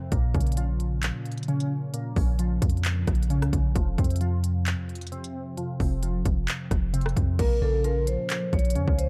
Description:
hip hop, trap; 132 BPM; 4/4; half-time; Bb minor; A4 = 444 Hz
glassy digital keys; accompaniment; 0.0-9.1 s; F2 to F3; -32 LUFS; equal; chorus, phaser, low-pass filter
warm 808-style bass; bass; 0.1-9.1 s; F1 to F2; -28 LUFS; equal
trap drum kit; drums; 0.1-9.1 s; crash cymbal, handclaps, hi-hat, kick drum, rim click; -29 LUFS; equal
vibraphone with medium hard mallets; melody; 7.4-9.1 s; A4 to Db5; -31 LUFS; equal; low-pass filter
little or no reverb; dark, warm production; -26 LUFS; mono
0.0-7.4 A section; 7.4-9.1 B section
0.1 Bbm; 3.8 F5; 7.4 Bbm
| 0.12 0.57 1.03 1.48 | 1.94 2.39 2.85 3.30 | 3.75 4.21 4.66 5.12 | 5.57 6.03 6.48 6.94 | 7.39 7.85 8.30 8.76

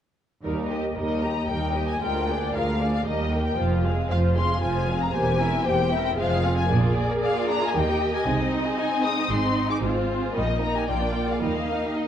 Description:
quick classical-period movement for string orchestra; 115 BPM; 3/4; straight; Eb major; A4 = 440 Hz
rich studio violin section; second line; 0.4-12.0 s; G3 to G5; -29 LUFS; left 2 dB
rich studio viola section; accompaniment; 0.4-12.1 s; F3 to Bb4; -28 LUFS; right 2 dB
rich studio cello section; bass; 0.4-11.9 s; D2 to Eb3; -29 LUFS; right 2 dB
rich studio double bass section; bass; 0.4-11.9 s; E1 to Eb2; -28 LUFS; right 2 dB
rich studio violin section; melody; 1.0-12.1 s; Eb5 to Eb6; -28 LUFS; left 6 dB
wet recital hall reverb, RT60 1.7 s; worn, warbling old tape, cassette tape, warbly pitch drift; -22 LUFS; side -9 dB against mid
0.4-12.1 A section
0.4 Eb; 2.0 Bb7/D; 3.1 Eb; 3.6 Fm; 5.1 C7/E; 6.2 Fm; 6.7 Bb7; 7.7 Eb; 8.3 Ab/C; 9.3 Ab; 9.8 Fm/Ab; 10.4 Eb/Bb; 10.9 Bb7; 11.4 Eb
| 0.43 0.96 1.49 | 2.01 2.54 3.06 | 3.58 4.11 4.63 | 5.15 5.66 6.18 | 6.70 7.23 7.74 | 8.27 8.79 9.31 | 9.83 10.36 10.89 | 11.43 11.97

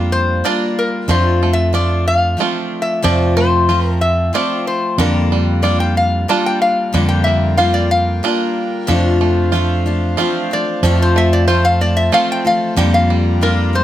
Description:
acoustic folk duo or small band; 92 BPM; 3/4; straight; A4 = 440 Hz
picked steel-string acoustic guitar; accompaniment; 0.0-13.8 s; F2 to F4; -20 LUFS; left 4 dB
bluegrass banjo; arpeggios; 0.0-13.8 s; D3 to F4; -21 LUFS; right 6 dB
fingered electric bass; bass; 0.0-13.8 s; F2; -16 LUFS; right 1 dB
metal-body resonator slide guitar; melody; 0.1-13.8 s; Bb4 to A5; -17 LUFS; left 2 dB
pipe organ, foundations; sustained chords; 6.9-13.8 s; D4 to Bb5; -26 LUFS; equal
little or no reverb; close, detailed microphones; -13 LUFS; side -12 dB against mid
0.0-13.8 A section
resonator guitar played with a steel bar solo 0.0-13.8
0.0 Gm7/F; 1.1 Dm7/F; 3.0 F; 5.0 Bb6/F; 8.9 Dm7/F; 10.8 F; 12.8 Bb6/F
0.45 | 1.10 1.75 2.40 | 3.04 3.69 4.34 | 4.99 5.64 6.29 | 6.94 7.59 8.24 | 8.89 9.54 10.19 | 10.83 11.48 12.13 | 12.78 13.43

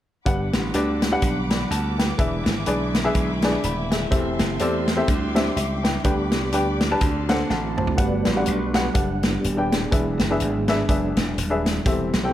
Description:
uptempo gospel; 124 BPM; 4/4; swing 58% on 8ths; G major; A4 = 439 Hz
warm upright piano; accompaniment; 0.3-12.3 s; G2 to B5; -25 LUFS; left 1 dB
mellow tonewheel organ; sustained chords; 0.3-12.3 s; C3 to F#5; -28 LUFS; right 1 dB; slow rotary speaker, chorus vibrato
warm studio string section; sustained chords; 0.3-8.0 s; G4 to D6; -33 LUFS; left 1 dB
slap bass; bass; 0.3-12.3 s; Eb1 to E2; -27 LUFS; equal
natural country drum kit; drums; 0.3-12.2 s; hi-hat, kick drum, snare drum, toms; -24 LUFS; equal
light reverb; -20 LUFS; side -12 dB against mid
0.3-8.0 A section; 8.0-12.3 B section
upright piano fill 7.0-8.0; drum fill 7.5-8.0; tonewheel organ solo 8.0-12.3
0.3 Gmaj7; 2.2 E7; 4.1 Am7/E; 5.1 D9sus4; 6.0 G; 7.0 D7; 8.0 Gmaj7; 9.9 E7
| 0.26 0.74 1.22 1.71 | 2.19 2.67 3.15 3.63 | 4.12 4.60 5.08 5.57 | 6.05 6.53 7.02 7.50 | 7.98 8.47 8.95 9.44 | 9.92 10.40 10.89 11.37 | 11.86

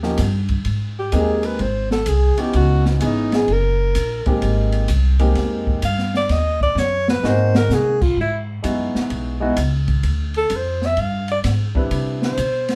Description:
jazz, small-group swing and bop; 128 BPM; 4/4; swing 66% on 8ths; A4 = 440 Hz
warm concert grand piano; accompaniment; 0.0-12.4 s; Fb3 to B4; -25 LUFS; equal
upright bass; bass; 0.0-12.8 s; Gb1 to C3; -22 LUFS; equal
open jazz drum kit; drums; 0.0-12.8 s; crash cymbal, hi-hat, kick drum, ride cymbal, snare drum; -26 LUFS; equal
breathy alto saxophone; melody; 1.0-12.8 s; Cb4 to F5; -23 LUFS; equal
moderate small room reverb, RT60 0.5 s; heard from further back in the room; -19 LUFS; mono
0.0-8.2 A section; 8.2-12.8 A section
alto saxophone solo 0.0-12.8; drum fill 6.8-7.7
0.0 Eb9; 0.7 Abmaj9; 1.6 Ab7; 2.5 Dbm7; 3.5 Gbadd9; 4.4 Abmaj9; 6.3 Ebm; 7.2 Ab7; 8.2 Dbm11; 10.0 Dm; 11.0 G; 11.9 Cmaj9
0.19 | 0.66 1.13 1.60 2.07 | 2.54 3.01 3.48 3.95 | 4.42 4.89 5.36 5.83 | 6.30 6.77 7.24 7.70 | 8.17 8.64 9.11 9.57 | 10.04 10.51 10.97 11.44 | 11.91 12.38

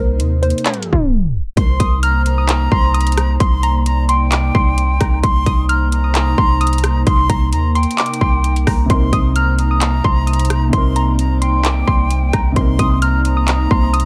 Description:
hip hop, trap; 131 BPM; 4/4; half-time; C minor; A4 = 440 Hz
soft round pluck; melody; 0.0-14.1 s; Bb4 to F6; -23 LUFS; equal; chorus, analog delay
glassy FM pad; sustained chords; 0.0-14.1 s; C3 to D5; -26 LUFS; equal; ensemble chorus, built-in reverb
long sustained 808-style bass; bass; 0.0-14.1 s; C2 to Eb2; -19 LUFS; equal
trap drum kit; drums; 0.2-14.1 s; handclaps, hi-hat, kick drum, rim click; -20 LUFS; equal
silver concert flute; second line; 1.6-14.1 s; G5 to C6; -27 LUFS; equal; analog delay
felt-muted upright piano; accompaniment; 8.9-14.1 s; C3 to Bb4; -25 LUFS; equal; analog delay
light reverb, digital ambience; echo-heavy mix, tape stop; -15 LUFS; mono
0.0-1.6 A section; 1.6-14.1 B section
tape stop 0.7-1.6
0.0 Cm7
0.20 0.66 1.11 | 1.57 2.03 2.49 2.94 | 3.40 3.86 4.32 4.78 | 5.24 5.69 6.15 6.61 | 7.07 7.53 7.98 8.44 | 8.90 9.36 9.81 10.27 | 10.73 11.19 11.65 12.11 | 12.56 13.02 13.48 13.94

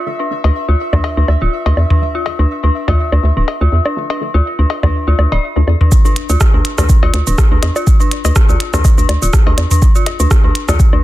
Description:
minimal techno; 123 BPM; 4/4; swing 55% on 16ths; D minor; A4 = 440 Hz
pulsing gated texture; texture; 0.0-5.9 s; E5; -27 LUFS; right 3 dB; chorus, built-in reverb, sidechain pumping
filtered dub chord stab; stabs; 0.1-5.7 s; D4 to A4; -27 LUFS; left 6 dB; phaser, ping-pong delay
dark detuned synth bell; riff; 0.2-11.0 s; D4 to D5; -20 LUFS; left 2 dB; chorus, sidechain pumping, low-pass filter, ping-pong delay
hollow knocking FM bass; bass; 0.4-11.0 s; D1 to E2; -13 LUFS; equal; sidechain pumping
electronic cowbell, toms and woodblock; percussion; 0.4-11.0 s; -17 LUFS; left 1 dB
electronic kick drum; drums; 5.9-10.9 s; -10 LUFS; equal
minimal click drum kit; drums; 5.9-10.9 s; cabasa, hi-hat, rim click; -21 LUFS; right 2 dB; low-pass filter on perc, low-pass filter on hats, low-pass filter on cymbals, soft clipping on snare, low-pass filter on snare, low-pass filter on room
digital ambience; dense, heavily limited modern master; -11 LUFS; side -15 dB against mid
0.0-5.9 A section; 5.9-11.0 B section
filter sweep on synth bell 0.0-5.9; drop 5.9-11.0
0.0 Dm; 5.9 N.C.
| 0.07 0.55 1.04 1.53 | 2.02 2.50 2.99 3.48 | 3.97 4.46 4.94 5.43 | 5.92 6.41 6.89 7.38 | 7.87 8.36 8.85 9.33 | 9.82 10.31 10.80

